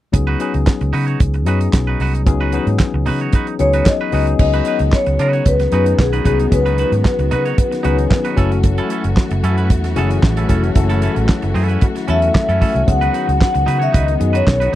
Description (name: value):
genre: disco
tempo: 113 BPM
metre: 4/4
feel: straight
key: unclear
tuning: A4 = 441 Hz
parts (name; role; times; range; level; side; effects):
- tine electric piano; accompaniment; 0.1-14.8 s; E3 to A4; -22 LUFS; left 7 dB; overdrive
- twangy electric guitar; accompaniment; 0.1-14.8 s; C#4 to C#5; -25 LUFS; right 6 dB; none
- vintage muted fingered electric bass; bass; 0.1-14.7 s; E#1 to C#3; -17 LUFS; right 1 dB; none
- damped 70s drum kit; drums; 0.1-14.7 s; crash cymbal, handclaps, hi-hat, kick drum, snare drum; -14 LUFS; right 1 dB; none
- vibraphone with soft mallets; melody; 3.6-8.3, 12.1-14.8 s; G#4 to F#5; -18 LUFS; left 2 dB; none
- dark studio string section; sustained chords; 4.4-14.8 s; D#3 to F#4; -25 LUFS; right 1 dB; none
room: little or no reverb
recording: dry, close 1970s-style studio recording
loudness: -13 LUFS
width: side -13 dB against mid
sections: 0.1-4.4 A section; 4.4-14.8 B section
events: none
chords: 0.1 C#9sus4; 8.4 F#m7; 12.9 C#9sus4